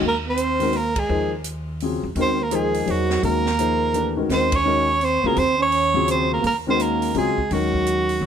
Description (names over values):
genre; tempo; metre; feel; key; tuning
modal jazz; 168 BPM; 3/4; swing 63% on 8ths; Eb dorian; A4 = 439 Hz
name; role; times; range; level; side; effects
upright bass; bass; 0.0-8.3 s; Db2 to Fb2; -28 LUFS; right 1 dB; none
breathy soprano saxophone; melody; 0.1-8.3 s; Gb4 to Db5; -22 LUFS; right 2 dB; plate reverb
breathy trombone; second line; 0.1-8.3 s; Gb3 to Db4; -25 LUFS; right 5 dB; none
open jazz drum kit; drums; 0.4-8.3 s; hi-hat, kick drum, ride cymbal, snare drum, toms; -32 LUFS; right 1 dB; none
dark concert grand piano; accompaniment; 0.6-8.3 s; Db3 to C5; -24 LUFS; left 5 dB; none
room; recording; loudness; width
moderate club reverb, RT60 0.6 s; none; -18 LUFS; side -8 dB against mid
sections
0.0-8.3 A section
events
band accent 0.9, 4.5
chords
0.0 Ebm11